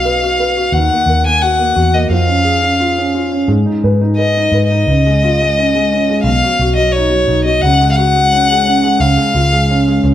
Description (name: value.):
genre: acoustic folk-pop ballad.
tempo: 87 BPM.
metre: 4/4.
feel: straight.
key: unclear.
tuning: A4 = 441 Hz.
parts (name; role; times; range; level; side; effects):
clear violin; second line; 0.0-10.0 s; C#5 to G#5; -14 LUFS; left 2 dB; none.
felt-muted upright piano; accompaniment; 0.0-10.1 s; B2 to D#5; -16 LUFS; right 1 dB; none.
vintage muted fingered electric bass; bass; 0.0-10.1 s; B1 to G#2; -16 LUFS; equal; none.
room: moderate large studio reverb, RT60 1.2 s.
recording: band playing live in one room.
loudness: -10 LUFS.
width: side -11 dB against mid.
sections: 0.0-10.1 A section.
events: violin solo 0.0-10.1.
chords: 0.0 B; 0.7 D#m; 2.1 C#/E#; 3.5 G#m; 4.9 C#; 6.2 B; 7.6 C#sus4; 9.0 C#.